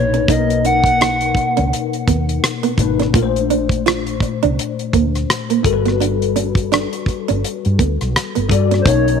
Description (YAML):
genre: R&B, neo-soul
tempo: 84 BPM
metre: 4/4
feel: swing 57% on 16ths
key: unclear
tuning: A4 = 440 Hz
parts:
  - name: hollow clarinet-like synth lead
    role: melody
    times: 0.0-2.0, 8.8-9.2 s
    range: C5 to F#5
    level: -18 LUFS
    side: right 2 dB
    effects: chorus, tape echo
  - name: bell-like tine electric piano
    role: accompaniment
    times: 0.0-9.2 s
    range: A#2 to D5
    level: -20 LUFS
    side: left 11 dB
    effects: ensemble chorus
  - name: woody fretless electric bass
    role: bass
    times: 0.0-9.2 s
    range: G1 to G2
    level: -20 LUFS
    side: right 1 dB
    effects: wide subtle chorus
  - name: nylon-string guitar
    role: second line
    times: 0.1-8.8 s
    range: A#3 to E#4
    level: -21 LUFS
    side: right 13 dB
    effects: none
  - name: damped 70s drum kit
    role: drums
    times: 0.1-9.2 s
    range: hi-hat, kick drum, rim click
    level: -19 LUFS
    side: equal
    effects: none
  - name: tonewheel organ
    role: sustained chords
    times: 8.9-9.2 s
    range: A#3 to D#4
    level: -24 LUFS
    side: equal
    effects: slow rotary speaker, overdrive, chorus vibrato
room: light reverb, small room reverb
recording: 1960s-style stereo with parts hard left and right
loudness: -14 LUFS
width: side -7 dB against mid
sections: 0.0-8.9 A section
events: none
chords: 0.0 Bmaj9; 3.1 A#maj9; 5.6 Gmaj9